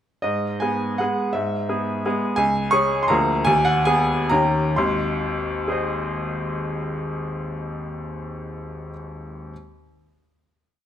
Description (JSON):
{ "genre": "classical, romantic triple-time dance for piano with dotted rhythms", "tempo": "124-194 BPM", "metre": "3/4", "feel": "rubato", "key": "unclear", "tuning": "A4 = 436 Hz", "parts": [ { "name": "bright baby grand piano", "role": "solo", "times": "0.2-9.5 s", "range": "G#1 to C#6", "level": "-20 LUFS", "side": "equal", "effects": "none" } ], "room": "moderate recital hall reverb, RT60 1.4 s", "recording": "close, detailed microphones", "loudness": "-20 LUFS", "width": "side -10 dB against mid", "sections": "0.2-4.8 A section; 4.8-7.4 final chord", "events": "slowing down 1.9-4.8", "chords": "0.2 G#m; 2.4 C#5; 3.1 A#7/D; 3.5 G#m/D#; 4.3 D#7; 4.8 G#", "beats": "| 0.24 0.62 1.00 | 1.35 1.70 2.06 | 2.38 2.73 3.10 | 3.48 3.88 4.32 | 4.78 5.22 5.68 | 6.11 6.56 7.01" }